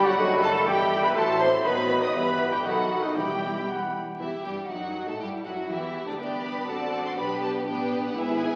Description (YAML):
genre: quick classical-period movement for symphony orchestra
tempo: 121 BPM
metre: 2/4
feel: rubato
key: E minor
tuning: A4 = 441 Hz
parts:
  - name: clear chamber violin section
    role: melody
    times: 0.0-8.6 s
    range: D5 to C6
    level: -40 LUFS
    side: equal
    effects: none
  - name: clear chamber violin section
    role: second line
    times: 0.0-8.6 s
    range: D4 to D#6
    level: -33 LUFS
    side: equal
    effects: none
  - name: mellow clarinet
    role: second line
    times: 0.0-4.2 s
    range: D5 to G5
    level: -34 LUFS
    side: equal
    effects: none
  - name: silver concert flute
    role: second line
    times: 0.0-3.9 s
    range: B5 to C6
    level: -32 LUFS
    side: equal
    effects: none
  - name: warm cor anglais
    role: second line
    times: 0.0-3.7 s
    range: D#4 to D#5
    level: -36 LUFS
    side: equal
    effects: none
  - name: mellow bassoon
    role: accompaniment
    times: 0.0-3.9 s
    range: F#3 to A3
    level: -37 LUFS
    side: equal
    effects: none
  - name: rich chamber viola section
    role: accompaniment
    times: 0.0-8.6 s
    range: D3 to A4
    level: -34 LUFS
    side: equal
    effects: none
  - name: warm French horn section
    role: sustained chords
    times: 0.0-3.7 s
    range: D#3 to D#4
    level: -34 LUFS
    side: equal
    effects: none
  - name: warm chamber double bass section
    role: bass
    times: 0.0-8.6 s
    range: F#1 to A2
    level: -42 LUFS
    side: equal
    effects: none
  - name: warm symphonic cello section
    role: bass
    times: 0.0-8.6 s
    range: D4 to D#5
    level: -32 LUFS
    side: equal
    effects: none
  - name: timpani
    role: percussion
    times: 3.2-3.9 s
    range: E2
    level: -47 LUFS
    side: equal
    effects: none
room: wet scoring stage reverb, RT60 1.9 s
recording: very old 78 rpm record, vinyl crackle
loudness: -26 LUFS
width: mono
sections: 0.0-4.2 A section; 4.2-8.6 A section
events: none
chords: 0.2 B7/F#; 0.7 Em/G; 1.2 F#m7b5/A; 1.6 B7/A; 2.1 Em/G; 2.6 B7; 3.2 Em; 4.7 F#m6; 5.2 Em; 6.2 G; 6.7 D7/A; 7.2 G/B